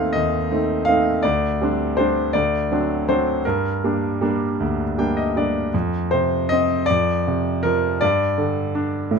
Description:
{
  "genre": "classical, lyrical solo piano",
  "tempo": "53 BPM (dotted quarters)",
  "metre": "6/8",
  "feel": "rubato",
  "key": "G minor",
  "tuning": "A4 = 442 Hz",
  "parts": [
    { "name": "clear concert grand piano", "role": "solo", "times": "0.0-9.2 s", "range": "D2 to A5", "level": "-18 LUFS", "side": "equal", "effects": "none" }
  ],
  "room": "light reverb",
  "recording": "minimal, uncompressed stereo recording",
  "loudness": "-18 LUFS",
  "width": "side -5 dB against mid",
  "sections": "0.0-5.7 A section; 5.7-9.2 B section",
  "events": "grand piano fill 4.6-5.7",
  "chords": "0.0 Adim/Eb; 1.2 D7sus4; 2.3 D7; 3.4 Gm; 5.7 F5; 8.0 G5",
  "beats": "0.15 | 1.24 2.33 | 3.44 4.59 | 5.74 6.88 | 8.02 9.12"
}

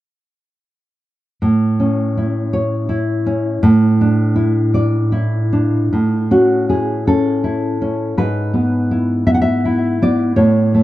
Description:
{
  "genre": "romantic piece for solo classical guitar",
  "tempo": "48-56 BPM (dotted quarters)",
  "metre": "6/8",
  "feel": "rubato",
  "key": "A major",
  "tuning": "A4 = 440 Hz",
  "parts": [
    { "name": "nylon-string guitar", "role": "solo", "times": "1.4-10.8 s", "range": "G#2 to F#5", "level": "-13 LUFS", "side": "equal", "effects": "analog delay" }
  ],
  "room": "moderate spring reverb, RT60 1.0 s, small room reverb",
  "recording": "dark, warm production",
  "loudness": "-14 LUFS",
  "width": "side -15 dB against mid",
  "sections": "1.4-5.9 A section; 5.9-10.8 B section",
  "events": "none",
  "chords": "1.4 A; 3.6 Asus4; 5.9 A; 8.2 E/G#",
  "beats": "| 1.42 2.54 | 3.61 4.74 | 5.94 7.06 | 8.17 9.27 | 10.37"
}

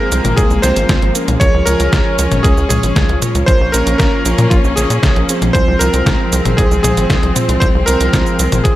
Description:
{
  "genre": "italo disco",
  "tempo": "116 BPM",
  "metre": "4/4",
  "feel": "straight",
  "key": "unclear",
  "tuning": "A4 = 440 Hz",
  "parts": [
    { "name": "bright electric grand piano", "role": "melody", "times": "0.0-8.8 s", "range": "F4 to Db5", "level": "-18 LUFS", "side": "equal", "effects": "ping-pong delay" },
    { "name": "bright studio string section", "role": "sustained chords", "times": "0.0-8.8 s", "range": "F3 to Db4", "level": "-20 LUFS", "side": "left 2 dB", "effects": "none" },
    { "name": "chorused polysynth", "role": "stabs", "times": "0.0-8.8 s", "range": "C4 to Db5", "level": "-21 LUFS", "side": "right 3 dB", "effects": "none" },
    { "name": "tight sequencer bass", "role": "bass", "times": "0.1-8.7 s", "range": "Ab1 to Bb2", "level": "-16 LUFS", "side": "equal", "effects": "none" },
    { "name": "detuned 8-bit digital drum machine", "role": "drums", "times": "0.1-8.8 s", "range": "cabasa, hi-hat, snare drum, toms", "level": "-18 LUFS", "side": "left 1 dB", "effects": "studio reverb" },
    { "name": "electronic kick drum", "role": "drums", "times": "0.4-8.8 s", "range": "none", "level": "-15 LUFS", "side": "equal", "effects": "studio reverb" }
  ],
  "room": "digital ambience",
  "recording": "none",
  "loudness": "-11 LUFS",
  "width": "side -14 dB against mid",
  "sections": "0.0-8.8 A section",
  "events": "none",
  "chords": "0.0 Fm; 1.4 Db; 3.5 Bbm; 5.5 Fm",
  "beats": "0.38 0.89 | 1.41 1.93 2.44 2.96 | 3.48 4.00 4.51 5.03 | 5.55 6.07 6.58 7.10 | 7.62 8.13 8.65"
}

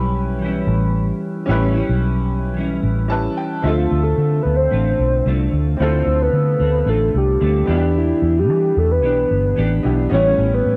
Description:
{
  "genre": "indie pop, bedroom pop",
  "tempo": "111 BPM",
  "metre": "4/4",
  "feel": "straight",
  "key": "D dorian",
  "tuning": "A4 = 441 Hz",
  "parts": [
    { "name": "bright upright piano", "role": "accompaniment", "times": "0.0-10.8 s", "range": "B3 to A5", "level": "-28 LUFS", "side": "equal", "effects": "cassette tape" },
    { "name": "semi-hollow electric guitar", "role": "accompaniment", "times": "0.0-10.8 s", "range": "A2 to G4", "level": "-26 LUFS", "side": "equal", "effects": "analog chorus, warbly pitch drift" },
    { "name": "vintage muted fingered electric bass", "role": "bass", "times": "0.0-10.8 s", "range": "G1 to E3", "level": "-21 LUFS", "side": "equal", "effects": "none" },
    { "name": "soft octave-layered synth lead", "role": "melody", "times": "3.6-10.8 s", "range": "E4 to C#5", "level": "-21 LUFS", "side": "equal", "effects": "analog chorus, analog delay" }
  ],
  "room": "moderate booth ambience, RT60 0.2 s",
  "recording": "home recording on cassette",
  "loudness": "-18 LUFS",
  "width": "mono",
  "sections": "0.0-3.6 A section; 3.6-10.8 B section",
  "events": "upright piano fill 2.8-3.6",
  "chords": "0.0 A7; 3.6 Dm7; 7.7 Em7; 10.1 A7",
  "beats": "0.40 0.94 | 1.48 2.02 2.56 3.10 | 3.64 4.18 4.72 5.26 | 5.80 6.34 6.88 7.42 | 7.96 8.50 9.04 9.57 | 10.12 10.65"
}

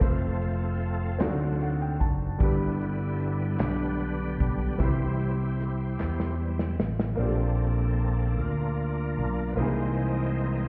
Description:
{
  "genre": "slow gospel",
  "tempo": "50 BPM (dotted quarters)",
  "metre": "6/8",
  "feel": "straight",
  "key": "C major",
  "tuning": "A4 = 440 Hz",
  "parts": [
    { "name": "clear baby grand piano", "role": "accompaniment", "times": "0.0-10.7 s", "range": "G2 to A5", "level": "-36 LUFS", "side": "equal", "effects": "none" },
    { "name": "bright tonewheel organ", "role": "sustained chords", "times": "0.0-10.7 s", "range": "D3 to F5", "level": "-35 LUFS", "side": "equal", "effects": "fast rotary speaker, overdrive, chorus vibrato" },
    { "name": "fingered electric bass", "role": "bass", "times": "0.0-10.7 s", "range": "F1 to E2", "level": "-30 LUFS", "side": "equal", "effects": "none" },
    { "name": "warm soul drum kit", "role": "drums", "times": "0.0-7.2 s", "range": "hi-hat, kick drum, snare drum", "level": "-30 LUFS", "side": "equal", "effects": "none" },
    { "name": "group handclap", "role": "percussion", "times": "1.2-6.4 s", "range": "none", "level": "-48 LUFS", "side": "equal", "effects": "none" }
  ],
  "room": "light reverb, studio reverb",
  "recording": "heard muffled through a wall, stone room reverb, EQ",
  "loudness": "-28 LUFS",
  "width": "mono",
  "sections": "0.0-7.2 A section; 7.2-10.7 B section",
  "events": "tonewheel organ solo 0.0-7.2, 7.2-10.7; grand piano fill 1.2-2.4; drum fill 6.0-7.2",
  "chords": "0.0 F; 1.2 D7b9; 2.4 G; 4.8 C; 7.2 Bbmaj9; 9.6 C7alt",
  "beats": "| 0.01 1.21 | 2.41 3.60 | 4.80 6.00 | 7.20 8.39 | 9.59"
}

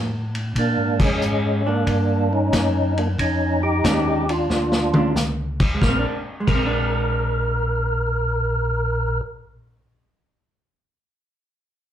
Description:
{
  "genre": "soul jazz organ trio",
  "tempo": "91 BPM",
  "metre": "4/4",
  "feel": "swing 67% on 8ths",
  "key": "Bb mixolydian",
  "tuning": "A4 = 440 Hz",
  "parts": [
    { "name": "mellow tonewheel organ", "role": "bass", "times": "0.0-9.2 s", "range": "Bb1 to Bb2", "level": "-24 LUFS", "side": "equal", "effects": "chorus vibrato, slow rotary speaker" },
    { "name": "vintage drum kit", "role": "drums", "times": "0.3-6.7 s", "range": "crash cymbal, hi-hat, kick drum, ride cymbal, snare drum, toms", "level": "-23 LUFS", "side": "equal", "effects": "none" },
    { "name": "percussive tonewheel organ", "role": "melody", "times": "0.6-9.2 s", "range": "Ab3 to Bb4", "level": "-22 LUFS", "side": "right 1 dB", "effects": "slow rotary speaker, overdrive, chorus vibrato" },
    { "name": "vintage hollow-body jazz guitar", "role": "accompaniment", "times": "1.7-10.0 s", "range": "Ab3 to D4", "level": "-28 LUFS", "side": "right 2 dB", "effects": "none" }
  ],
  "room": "wet club reverb, RT60 0.8 s",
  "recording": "heard from further back in the room",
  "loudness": "-18 LUFS",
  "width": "side -10 dB against mid",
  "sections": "0.0-5.8 A section; 5.8-8.5 B section",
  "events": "band accent 0.9-1.2; drum fill 4.5-5.2",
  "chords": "0.0 N.C.; 0.6 Bb7#9; 5.8 Bb9",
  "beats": "| 0.56 1.21 1.87 2.53 | 3.19 3.85 4.50 5.16 | 5.82 6.48 7.14 7.79"
}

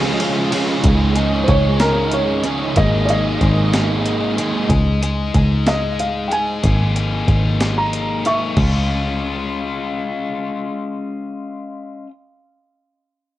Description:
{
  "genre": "indie rock",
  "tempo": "62 BPM (dotted quarters)",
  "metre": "6/8",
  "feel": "straight",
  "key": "Db major",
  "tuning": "A4 = 440 Hz",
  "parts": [
    { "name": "biting overdriven guitar", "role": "riff", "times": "0.0-12.1 s", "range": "Eb3 to Ab4", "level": "-23 LUFS", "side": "left 4 dB", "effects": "cassette tape" },
    { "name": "biting overdriven guitar", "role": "riff", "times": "0.0-4.7 s", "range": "Db3 to Ab4", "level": "-20 LUFS", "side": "right 4 dB", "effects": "ensemble chorus, cassette tape, analog delay" },
    { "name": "picked electric bass", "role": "bass", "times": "0.0-11.8 s", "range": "Ab1 to Db2", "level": "-18 LUFS", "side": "equal", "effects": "none" },
    { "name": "breakbeat sampler-style drum kit", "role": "drums", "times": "0.2-8.7 s", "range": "crash cymbal, hi-hat, kick drum, ride cymbal, snare drum", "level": "-22 LUFS", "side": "equal", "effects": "none" },
    { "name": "dark upright piano", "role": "melody", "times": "1.4-8.6 s", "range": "Bb4 to Db6", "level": "-22 LUFS", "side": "right 1 dB", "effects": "cassette tape, analog delay" }
  ],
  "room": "digital ambience",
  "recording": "home recording on cassette",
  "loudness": "-16 LUFS",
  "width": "side -14 dB against mid",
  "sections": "0.8-8.6 A section; 8.6-12.4 B section",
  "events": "upright piano solo 0.8-8.6",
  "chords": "0.0 Db; 0.8 Dbsus2; 2.8 Absus2; 4.7 Dbsus2; 6.6 Absus2; 8.6 Db",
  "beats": "| 0.84 1.80 | 2.77 3.73 | 4.70 5.66 | 6.63 7.60 | 8.57 9.54 | 10.51 11.48"
}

